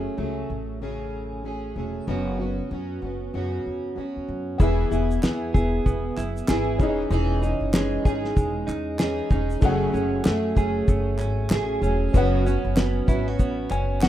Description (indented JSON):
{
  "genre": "acoustic pop",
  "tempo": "95 BPM",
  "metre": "4/4",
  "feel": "swing 60% on 16ths",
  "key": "E major",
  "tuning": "A4 = 439 Hz",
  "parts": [
    { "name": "fingerpicked plugged-in steel-string acoustic guitar", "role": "accompaniment", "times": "0.0-14.1 s", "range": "F#2 to G#4", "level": "-27 LUFS", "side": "right 1 dB", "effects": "double-tracked left and right, plate reverb" },
    { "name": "upright bass", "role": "bass", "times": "0.0-14.1 s", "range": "E1 to F#2", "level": "-27 LUFS", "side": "equal", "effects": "none" },
    { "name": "felt-muted upright piano", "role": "accompaniment", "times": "4.6-14.1 s", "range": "A3 to G#5", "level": "-32 LUFS", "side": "left 5 dB", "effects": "plate reverb" },
    { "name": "direct-recorded clean electric guitar", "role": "arpeggios", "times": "4.6-14.1 s", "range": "E3 to G#4", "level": "-29 LUFS", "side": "right 3 dB", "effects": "warbly pitch drift, ping-pong delay, plate reverb" },
    { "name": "cloth-damped thuddy drum kit", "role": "drums", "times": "4.6-14.1 s", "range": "kick drum, shaker, snare drum", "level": "-21 LUFS", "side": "equal", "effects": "none" },
    { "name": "group handclap", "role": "percussion", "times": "5.2-14.1 s", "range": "none", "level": "-39 LUFS", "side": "right 2 dB", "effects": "none" }
  ],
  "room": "moderate small room reverb, RT60 0.6 s",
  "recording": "rough home demo mix",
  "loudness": "-22 LUFS",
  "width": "side -12 dB against mid",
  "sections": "0.0-4.6 A section; 4.6-14.1 B section",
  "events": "felt piano fill 13.4-14.1",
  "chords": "0.0 F#madd9; 2.1 Bsus2/F#; 4.6 E; 6.8 C#madd9/E; 9.6 F#madd9; 12.1 Bsus2/F#"
}